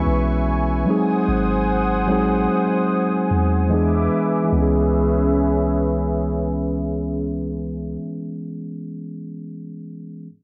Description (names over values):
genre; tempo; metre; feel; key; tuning
contemporary R&B; 74 BPM; 4/4; swing 54% on 16ths; C# minor; A4 = 441 Hz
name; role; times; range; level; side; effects
mellow tine electric piano; accompaniment; 0.0-10.3 s; E3 to G#4; -23 LUFS; equal; low-pass filter, cassette tape
warm analog pad; sustained chords; 0.0-8.0 s; C#4 to D#6; -27 LUFS; equal; chorus, low-pass filter, cassette tape
soft 808-style bass; bass; 0.0-8.0 s; G#1 to E2; -26 LUFS; equal; none
room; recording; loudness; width
light reverb; home recording on cassette, nothing above 7.7 kHz; -20 LUFS; mono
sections
0.0-4.5 A section; 4.5-7.8 B section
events
filter sweep 0.0-4.5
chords
0.0 C#m7; 0.9 G#7; 3.7 E7; 4.5 C#m7